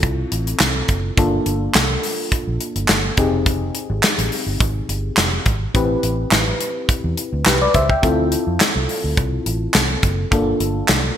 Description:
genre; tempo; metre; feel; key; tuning
early-eighties boogie funk; 105 BPM; 4/4; straight; D minor; A4 = 440 Hz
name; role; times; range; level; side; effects
mellow FM electric piano; accompaniment; 0.0-11.2 s; Bb3 to G5; -22 LUFS; left 2 dB; chorus
vintage muted fingered electric bass; bass; 0.0-11.1 s; F1 to F2; -22 LUFS; right 1 dB; none
modern studio drum kit; drums; 0.0-11.0 s; handclaps, hi-hat, kick drum, snare drum; -18 LUFS; equal; gated reverb
room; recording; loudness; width
moderate lush hall reverb, RT60 1.6 s, studio reverb; bright 1980s-style digital production; -16 LUFS; side -10 dB against mid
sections
0.0-11.2 A section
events
none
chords
0.0 Dm9 (rootless); 1.2 Gm9; 3.2 Fm9; 5.7 Am9; 8.0 Dm9; 10.3 Gm9

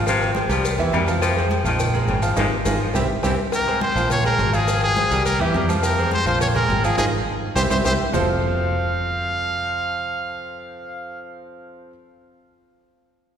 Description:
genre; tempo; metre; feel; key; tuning
latin, salsa; 208 BPM; 4/4; straight; F minor; A4 = 438 Hz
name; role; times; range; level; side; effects
bright concert grand piano; accompaniment; 0.0-11.9 s; E3 to F5; -25 LUFS; right 2 dB; none
fingered electric bass; bass; 0.0-11.9 s; F1 to F2; -24 LUFS; equal; none
clear baritone saxophone; second line; 0.1-3.4 s; C3 to F3; -26 LUFS; left 4 dB; none
agogo bells and timbales; percussion; 0.1-8.2 s; none; -31 LUFS; left 2 dB; none
congas; percussion; 0.1-8.2 s; none; -30 LUFS; equal; none
cowbell and bongos; percussion; 0.1-8.2 s; none; -30 LUFS; left 2 dB; none
maracas; percussion; 0.1-8.2 s; none; -34 LUFS; left 4 dB; none
brilliant trumpet; melody; 3.5-11.2 s; G4 to F5; -23 LUFS; equal; none
room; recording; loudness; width
wet church reverb, RT60 2.8 s; recorded in a church or concert hall; -18 LUFS; side -8 dB against mid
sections
0.0-3.5 A section; 3.5-8.1 B section; 8.1-10.4 C section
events
band accent 2.4-3.5, 7.0-8.1; drum fill 2.7-3.5, 7.4-8.1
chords
0.1 Ab6; 0.6 C7; 1.2 Fm; 1.8 Bbm7; 2.4 Ab6; 2.9 C; 3.5 Fm; 4.1 Bb5; 4.7 Ab6; 5.3 C7; 5.8 Fm; 6.4 Bb5; 7.0 Ab5; 7.6 C; 8.1 F

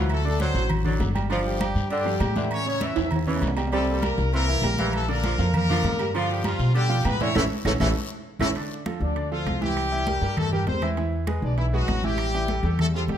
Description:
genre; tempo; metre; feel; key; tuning
latin, salsa; 198 BPM; 4/4; straight; D minor; A4 = 440 Hz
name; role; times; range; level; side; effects
bright horn section; melody; 0.0-13.2 s; E3 to E5; -28 LUFS; left 2 dB; none
clear saxophone section; second line; 0.0-8.5 s; C#3 to A3; -30 LUFS; right 1 dB; none
bright grand piano; accompaniment; 0.0-13.2 s; C3 to D6; -30 LUFS; right 4 dB; none
upright bass; bass; 0.0-13.2 s; G1 to B2; -26 LUFS; equal; none
agogo bells and timbales; percussion; 0.1-13.2 s; none; -34 LUFS; right 6 dB; none
claves; percussion; 0.1-12.9 s; none; -43 LUFS; right 5 dB; none
congas; percussion; 0.1-13.2 s; none; -31 LUFS; left 2 dB; none
guiro; percussion; 0.1-8.5 s; none; -43 LUFS; left 6 dB; none
room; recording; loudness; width
moderate large studio reverb, RT60 1.4 s; none; -22 LUFS; side -9 dB against mid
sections
0.0-8.6 A section; 8.6-13.2 B section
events
drum fill 3.0-3.7, 7.8-8.6; band accent 7.3-8.6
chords
0.1 D7; 1.3 G5; 2.5 A; 3.7 C7; 4.9 Bbmaj7; 6.1 G7; 7.3 A; 8.6 Dm7; 9.8 C7; 11.0 E7; 12.2 A7(no3)

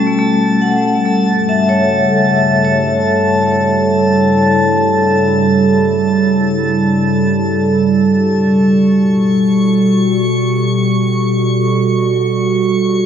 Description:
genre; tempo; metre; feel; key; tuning
ambient; free time; none; none; G lydian; A4 = 439 Hz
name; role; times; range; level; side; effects
warbly tape-like pad; sustained chords; 0.0-13.1 s; G2 to A4; -14 LUFS; right 1 dB; chorus, built-in reverb
vibraphone with hard mallets; arpeggios; 0.0-8.2 s; G3 to F#5; -17 LUFS; left 2 dB; tape echo
analog drone; drone; 0.0-13.1 s; G3; -16 LUFS; equal; chorus
drifting glass-harmonics texture; texture; 0.0-13.1 s; A5 to C#6; -19 LUFS; equal; chorus, built-in reverb, shimmer reverb
room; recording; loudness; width
wet lush hall reverb, RT60 3.0 s; none; -11 LUFS; side -8 dB against mid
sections
0.0-13.1 A section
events
fade-out on vibraphone 0.0-13.1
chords
0.0 Gmaj9; 1.3 A7/G; 8.2 Gmaj9

